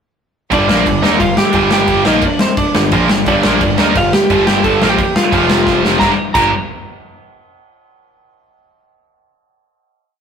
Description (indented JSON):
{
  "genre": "punk rock",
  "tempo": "175 BPM",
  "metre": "4/4",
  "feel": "straight",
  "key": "G minor",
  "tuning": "A4 = 440 Hz",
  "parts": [
    { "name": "lightly driven lead guitar", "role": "melody", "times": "0.5-6.5 s", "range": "C4 to Bb5", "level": "-16 LUFS", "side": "right 1 dB", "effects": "none" },
    { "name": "distorted electric guitar", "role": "riff", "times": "0.5-6.5 s", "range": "F2 to Eb4", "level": "-23 LUFS", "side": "left 5 dB", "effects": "distortion" },
    { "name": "heavy high-gain guitar", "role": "riff", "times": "0.5-6.5 s", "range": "F2 to Eb4", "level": "-20 LUFS", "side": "right 1 dB", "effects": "distortion" },
    { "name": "tight distorted guitar", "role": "riff", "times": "0.5-6.5 s", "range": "F2 to G4", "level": "-18 LUFS", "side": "right 6 dB", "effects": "distortion" },
    { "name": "growling picked electric bass", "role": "bass", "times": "0.5-6.5 s", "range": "F1 to Eb2", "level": "-20 LUFS", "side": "equal", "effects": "overdrive" },
    { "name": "big rock drum kit", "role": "drums", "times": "0.5-6.4 s", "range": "crash cymbal, kick drum, snare drum", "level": "-16 LUFS", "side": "left 2 dB", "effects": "none" }
  ],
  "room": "moderate stone room reverb, RT60 1.3 s",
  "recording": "rough rehearsal-room recording, warm saturation",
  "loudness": "-10 LUFS",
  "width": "side -7 dB against mid",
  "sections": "0.5-6.0 riff; 6.0-7.4 final chord",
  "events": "drum fill 5.7-6.0",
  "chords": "0.5 Gm; 5.3 F5; 6.0 Gm",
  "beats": "| 0.52 0.86 1.21 1.55 | 1.89 2.23 2.58 2.92 | 3.27 3.61 3.95 4.30 | 4.64 4.99 5.33 5.67 | 6.01 6.36"
}